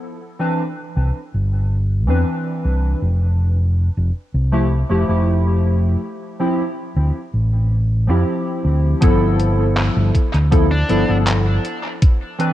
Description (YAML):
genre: vaporwave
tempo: 80 BPM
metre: 4/4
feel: straight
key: unclear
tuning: A4 = 440 Hz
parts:
  - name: warbly lo-fi synth keys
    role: accompaniment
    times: 0.4-12.5 s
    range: E3 to B4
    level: -20 LUFS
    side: equal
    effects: analog chorus, analog delay
  - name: fingered electric bass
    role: bass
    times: 1.0-11.6 s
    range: F1 to F2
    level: -16 LUFS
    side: equal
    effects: none
  - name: detuned 8-bit digital drum machine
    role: drums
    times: 9.0-12.5 s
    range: handclaps, hi-hat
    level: -25 LUFS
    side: equal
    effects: overdrive, analog delay
  - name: electronic kick drum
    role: drums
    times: 9.0-12.2 s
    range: none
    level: -14 LUFS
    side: equal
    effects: overdrive
  - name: smooth overdriven lead guitar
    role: melody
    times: 10.7-11.2 s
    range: D4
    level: -26 LUFS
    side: left 1 dB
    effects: tape echo
room: light reverb, digital ambience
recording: echo-heavy mix, cassette tape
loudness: -16 LUFS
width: side -14 dB against mid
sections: 0.0-9.0 A section; 9.0-12.5 B section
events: none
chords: 0.0 Cmaj9; 3.0 Fmaj9; 6.0 Dm11; 9.0 G13; 11.6 Cmaj9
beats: | 0.02 0.77 1.52 2.27 | 3.02 3.77 4.52 5.27 | 6.02 6.77 7.52 8.27 | 9.02 9.77 10.52 11.27 | 12.02